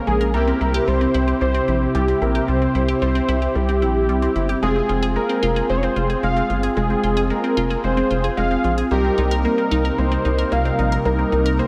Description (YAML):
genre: synth-pop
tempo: 112 BPM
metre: 4/4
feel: straight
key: F minor from 4.6 s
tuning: A4 = 440 Hz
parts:
  - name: analog synth brass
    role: accompaniment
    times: 0.0-11.7 s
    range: Bb3 to Bb4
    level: -27 LUFS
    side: equal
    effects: chorus
  - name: phased analog pad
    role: sustained chords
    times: 0.0-11.7 s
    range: C3 to G4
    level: -28 LUFS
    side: equal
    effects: phaser, chorus
  - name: resonant blip pluck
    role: arpeggios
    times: 0.0-11.7 s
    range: G3 to Bb4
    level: -30 LUFS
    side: equal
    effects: phaser, digital delay
  - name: unison lead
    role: melody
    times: 0.1-11.7 s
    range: G4 to F5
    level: -24 LUFS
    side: equal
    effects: digital delay
  - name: rubbery square bass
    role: bass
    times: 0.1-11.6 s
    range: F1 to C2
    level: -24 LUFS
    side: equal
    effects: none
room: light reverb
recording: none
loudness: -19 LUFS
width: mono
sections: 0.0-4.6 A section; 4.6-11.7 B section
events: none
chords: 0.3 C; 4.6 Fm; 8.9 Cm7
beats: | 0.34 0.88 1.41 1.95 | 2.48 3.02 3.56 4.09 | 4.63 5.16 5.70 6.23 | 6.77 7.30 7.84 8.38 | 8.91 9.45 9.98 10.52 | 11.05 11.59